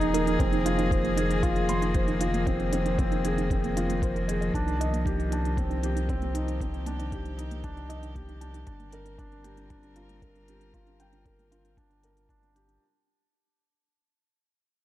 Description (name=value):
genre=piano and strings electronica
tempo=116 BPM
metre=4/4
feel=straight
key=unclear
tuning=A4 = 440 Hz
part: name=warm string quartet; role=sustained chords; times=0.0-12.8 s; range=Eb3 to Bb4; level=-31 LUFS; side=left 1 dB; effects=sidechain pumping
part: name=soft round pluck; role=arpeggios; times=0.0-12.8 s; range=Bb3 to Eb5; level=-35 LUFS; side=right 7 dB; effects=chorus, sidechain pumping, tape echo
part: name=felt-muted upright piano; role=riff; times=0.0-12.8 s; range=C4 to D6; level=-32 LUFS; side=left 1 dB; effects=tape echo
part: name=round analog bass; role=bass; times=0.0-12.8 s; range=Eb1 to C2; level=-32 LUFS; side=equal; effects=sidechain pumping
part: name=electronic hi-hat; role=drums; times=0.0-12.8 s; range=none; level=-41 LUFS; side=left 4 dB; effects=none
part: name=electronic kick drum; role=drums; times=0.4-12.4 s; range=none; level=-30 LUFS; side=equal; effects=none
room=light reverb, digital ambience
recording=dark, warm production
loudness=-25 LUFS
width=side -14 dB against mid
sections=0.0-12.8 A section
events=fade-out 0.0-12.8; filter sweep on synth arpeggio sound 0.0-12.8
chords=0.4 Fm; 4.5 Cmadd9; 8.7 Gm7